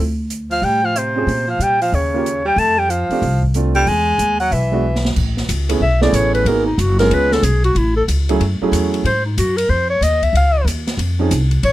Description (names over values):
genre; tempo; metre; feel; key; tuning
jazz, small-group swing and bop; 185 BPM; 4/4; swing 63% on 8ths; unclear; A4 = 441 Hz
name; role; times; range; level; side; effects
upright bass; bass; 0.0-11.7 s; F#1 to Bb2; -18 LUFS; equal; none
open jazz drum kit; drums; 0.3-11.7 s; crash cymbal, hi-hat, kick drum, ride cymbal, snare drum; -26 LUFS; equal; none
warm clarinet; melody; 0.5-11.7 s; D#4 to A5; -17 LUFS; left 1 dB; none
warm baritone saxophone; second line; 0.5-5.1 s; C3 to A3; -22 LUFS; right 3 dB; none
clear concert grand piano; accompaniment; 1.2-9.0, 11.2-11.3 s; E#3 to Ab4; -20 LUFS; right 3 dB; none
room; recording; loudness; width
little or no reverb; close, detailed microphones; -14 LUFS; side -15 dB against mid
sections
0.0-5.2 A section; 5.2-11.7 B section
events
drum fill 4.8-5.2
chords
0.0 Dm7; 1.3 Gm7/Bb; 1.9 Eb9; 2.6 F69; 3.9 E; 5.2 Amaj7; 6.5 G#m7; 7.1 C#7; 7.8 F#m7; 9.0 G#5; 10.3 C#maj7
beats
0.30 0.63 0.95 | 1.28 1.60 1.93 2.25 | 2.57 2.90 3.22 3.55 | 3.87 4.20 4.52 4.84 | 5.17 5.49 5.81 6.14 | 6.46 6.79 7.11 7.43 | 7.75 8.08 8.40 8.73 | 9.05 9.37 9.70 10.02 | 10.34 10.67 10.99 11.31 | 11.64